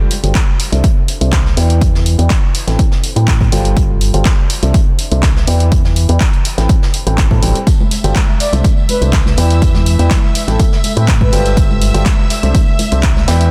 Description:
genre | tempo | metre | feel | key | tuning
piano house | 123 BPM | 4/4 | straight | unclear | A4 = 441 Hz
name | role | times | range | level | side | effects
clear upright piano | riff | 0.0-13.5 s | A2 to A5 | -23 LUFS | equal | sidechain pumping, low-pass filter, dub echo
punchy analog drum machine | drums | 0.1-13.5 s | handclaps, hi-hat | -24 LUFS | equal | none
vintage brush drum kit | drums | 0.1-13.4 s | hi-hat, snare drum | -32 LUFS | equal | none
organ-like FM bass | bass | 0.2-13.5 s | G1 to A2 | -15 LUFS | equal | sidechain pumping
electronic kick drum | drums | 0.4-13.1 s | none | -15 LUFS | equal | overdrive
string machine, violins | sustained chords | 7.7-13.5 s | E5 to E6 | -28 LUFS | equal | ensemble chorus, sidechain pumping
tambourine and congas | percussion | 7.7-13.5 s | none | -26 LUFS | equal | none
breathy flute-like synth lead | melody | 8.4-11.6 s | A4 to D5 | -24 LUFS | equal | chorus, dub echo
room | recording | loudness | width
small room ambience | dense, heavily limited modern master | -12 LUFS | mono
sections
0.0-13.5 A section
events
none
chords
0.0 G9sus4; 0.6 C69; 1.6 Em7; 2.5 Am9; 3.8 G9sus4; 4.5 C69; 5.5 Em7; 6.5 Am9; 7.7 G9sus4; 8.4 C69; 9.4 Em7; 10.4 Am9; 11.6 G9sus4; 12.3 C69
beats
0.35 0.84 1.33 | 1.82 2.30 2.79 3.28 | 3.77 4.25 4.74 5.23 | 5.72 6.21 6.69 7.18 | 7.67 8.16 8.64 9.13 | 9.62 10.11 10.60 11.08 | 11.57 12.06 12.55 13.04

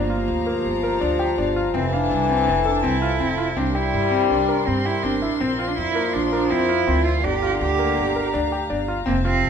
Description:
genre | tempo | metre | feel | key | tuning
contemporary instrumental, contemporary | 164 BPM | 5/4 | straight | G dorian | A4 = 440 Hz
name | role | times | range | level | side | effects
rich cello | melody | 0.0-9.5 s | Bb3 to G4 | -24 LUFS | right 6 dB | none
mellow French horn | second line | 0.0-9.5 s | C3 to G3 | -24 LUFS | left 4 dB | none
warm studio string section | sustained chords | 0.0-9.5 s | F4 to C6 | -31 LUFS | left 2 dB | none
upright bass | bass | 0.0-9.5 s | F1 to G2 | -26 LUFS | right 2 dB | none
clear grand piano | arpeggios | 0.1-9.4 s | Bb3 to F5 | -26 LUFS | left 3 dB | none
room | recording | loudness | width
wet recital hall reverb, RT60 1.8 s | minimal, uncompressed stereo recording | -19 LUFS | side -7 dB against mid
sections
0.0-9.5 A section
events
none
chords
0.0 Gm7; 1.7 Fmaj7; 3.6 C7; 5.4 Bbadd9; 7.2 Gm7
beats
0.28 0.65 1.02 1.38 | 1.75 2.11 2.48 2.85 3.21 | 3.58 3.94 4.31 4.68 5.04 | 5.41 5.78 6.14 6.51 6.87 | 7.24 7.61 7.97 8.34 8.70 | 9.07 9.43

